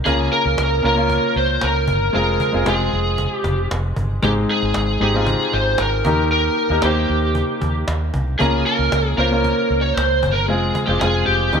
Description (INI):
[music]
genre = piano-driven pop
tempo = 115 BPM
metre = 4/4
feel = straight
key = unclear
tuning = A4 = 439 Hz
[part]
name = bright concert grand piano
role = accompaniment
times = 0.0-11.6 s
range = Ab2 to C5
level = -21 LUFS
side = left 1 dB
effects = none
[part]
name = lead guitar through a small cranked amp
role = melody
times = 0.1-11.6 s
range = G4 to Db5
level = -20 LUFS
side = right 1 dB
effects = overdrive, ensemble chorus
[part]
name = vintage muted fingered electric bass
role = bass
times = 0.1-11.6 s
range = F1 to Eb2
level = -21 LUFS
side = equal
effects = none
[part]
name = cajon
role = drums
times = 0.1-11.6 s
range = none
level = -28 LUFS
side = equal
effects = none
[sound]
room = moderate plate reverb, RT60 1.2 s, small room ambience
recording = bright 1980s-style digital production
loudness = -16 LUFS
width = side -6 dB against mid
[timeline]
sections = 0.0-11.6 A section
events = none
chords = 0.1 Bbm/Db; 2.1 Fm; 4.2 Ab; 6.1 Eb; 8.4 Bbm/Db; 10.5 Fm